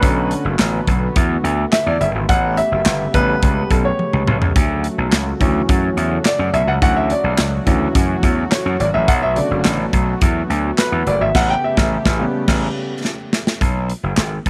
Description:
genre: early-eighties boogie funk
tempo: 106 BPM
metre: 4/4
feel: straight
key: B minor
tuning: A4 = 438 Hz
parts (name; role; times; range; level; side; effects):
- warm grand piano; accompaniment; 0.0-13.0 s; C#3 to G5; -22 LUFS; equal; none
- brassy analog pad; sustained chords; 0.0-13.6 s; C#3 to G4; -28 LUFS; equal; chorus
- gritty slap bass; bass; 0.0-14.5 s; F#1 to F#2; -21 LUFS; equal; overdrive
- modern studio drum kit; drums; 0.0-14.5 s; crash cymbal, handclaps, hi-hat, kick drum, snare drum, toms; -20 LUFS; equal; none
room: studio reverb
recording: none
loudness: -17 LUFS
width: mono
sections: 0.0-13.6 A section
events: grand piano solo 0.0-13.6; drum fill 4.0-4.6, 13.0-13.6; band accent 11.3-13.6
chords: 0.0 Bm7; 2.3 A9; 4.6 Dmaj7; 9.1 Bm7; 11.3 A9; 13.6 B5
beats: | 0.03 0.59 1.16 1.73 | 2.29 2.86 3.42 3.99 | 4.56 5.12 5.69 6.25 | 6.82 7.39 7.95 8.52 | 9.08 9.65 10.22 10.78 | 11.35 11.91 12.48 13.05 | 13.61 14.18

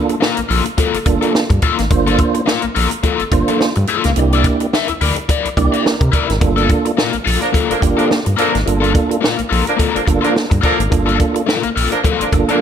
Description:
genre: funk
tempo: 107 BPM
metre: 4/4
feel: swing 56% on 16ths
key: G dorian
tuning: A4 = 440 Hz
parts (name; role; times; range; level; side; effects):
- mellow tonewheel organ; stabs; 0.0-12.6 s; Bb3 to D5; -19 LUFS; right 5 dB; chorus vibrato, fast rotary speaker
- crunchy overdriven guitar; accompaniment; 0.1-12.6 s; Bb3 to E5; -18 LUFS; left 8 dB; wah
- compact cocktail drum kit; drums; 0.1-12.6 s; hi-hat, kick drum, snare drum; -18 LUFS; right 1 dB; none
- round analog bass; bass; 0.4-12.4 s; G1 to C3; -19 LUFS; equal; none
- mellow horn section; second line; 7.4-12.6 s; F3 to Bb4; -20 LUFS; right 1 dB; none
room: moderate recital hall reverb, RT60 1.6 s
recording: none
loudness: -13 LUFS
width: side -8 dB against mid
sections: 0.0-12.6 A section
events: tonewheel organ fill 5.3-6.4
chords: 0.0 Gm9; 4.2 C9; 6.4 Gm9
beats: 0.22 0.78 1.34 | 1.91 2.47 3.04 3.60 | 4.16 4.73 5.29 5.85 | 6.42 6.98 7.54 8.10 | 8.67 9.23 9.79 10.36 | 10.92 11.48 12.04 12.61

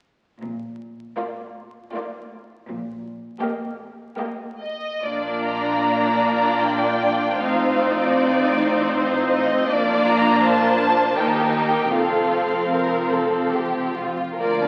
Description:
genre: classical, slow romantic movement for string orchestra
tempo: 65-84 BPM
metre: 3/4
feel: rubato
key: Bb major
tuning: A4 = 439 Hz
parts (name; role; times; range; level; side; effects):
- bright symphonic cello section; bass; 0.4-14.7 s; D2 to Bb2; -34 LUFS; equal; none
- dark chamber double bass section; bass; 0.4-14.7 s; F1 to Eb2; -40 LUFS; equal; none
- rich symphonic violin section; melody; 1.2-14.7 s; C5 to Bb5; -27 LUFS; equal; none
- warm symphonic violin section; second line; 1.2-14.7 s; Bb3 to D5; -25 LUFS; equal; none
- clear symphonic viola section; accompaniment; 1.2-14.7 s; F3 to F4; -25 LUFS; equal; none
room: wet concert hall reverb, RT60 1.9 s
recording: very old 78 rpm record, vinyl crackle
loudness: -21 LUFS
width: mono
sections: 0.4-5.0 A section; 5.0-14.7 B section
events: none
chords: 0.4 Bb; 7.4 F7/A; 9.7 Bb; 11.2 Eb; 11.9 F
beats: | 0.42 1.18 1.94 | 2.68 3.41 4.18 | 5.04 5.86 6.64 | 7.41 8.17 8.93 | 9.69 10.44 11.17 | 11.94 12.73 13.53 | 14.38

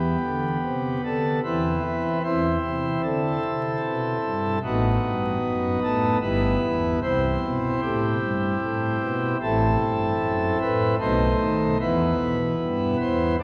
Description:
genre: classical, chorale-style piece for pipe organ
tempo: 75 BPM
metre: 3/4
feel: rubato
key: E minor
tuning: A4 = 440 Hz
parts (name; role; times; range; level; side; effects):
- pipe organ, principal chorus; solo; 0.0-13.4 s; G1 to C5; -24 LUFS; equal; none
room: wet church reverb, RT60 2.9 s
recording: worn, warbling old tape, cassette tape, vinyl crackle, warbly pitch drift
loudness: -24 LUFS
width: mono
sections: 0.0-13.4 A section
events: none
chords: 0.0 Em; 1.5 Cmaj7/E; 2.3 Am/E; 4.6 B7/A; 6.2 Em/G; 7.0 C; 9.4 F#m7b5/A; 11.0 B7b9; 11.8 Em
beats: 0.64 1.45 | 2.25 3.04 3.84 | 4.63 5.43 6.22 | 7.02 7.83 8.62 | 9.41 10.20 11.00 | 11.80 12.60

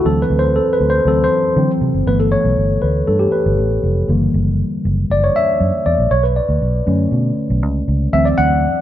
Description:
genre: polished 1980s jazz-funk pop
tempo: 119 BPM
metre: 4/4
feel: straight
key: unclear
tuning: A4 = 440 Hz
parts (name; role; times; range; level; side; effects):
- tine electric piano; accompaniment; 0.0-8.8 s; D3 to F#5; -16 LUFS; left 1 dB; lush chorus
- vintage muted fingered electric bass; bass; 0.0-8.7 s; E#1 to D3; -17 LUFS; right 1 dB; none
room: light reverb, digital ambience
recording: none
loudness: -13 LUFS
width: side -12 dB against mid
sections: 0.0-8.8 A section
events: tine electric piano solo 0.0-8.8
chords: 0.0 D9; 2.1 G69; 4.1 F#7b9b13; 6.1 Bm7; 8.1 D9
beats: | 0.05 0.55 1.06 1.56 | 2.07 2.58 3.08 3.59 | 4.09 4.60 5.10 5.61 | 6.11 6.62 7.12 7.63 | 8.13 8.64

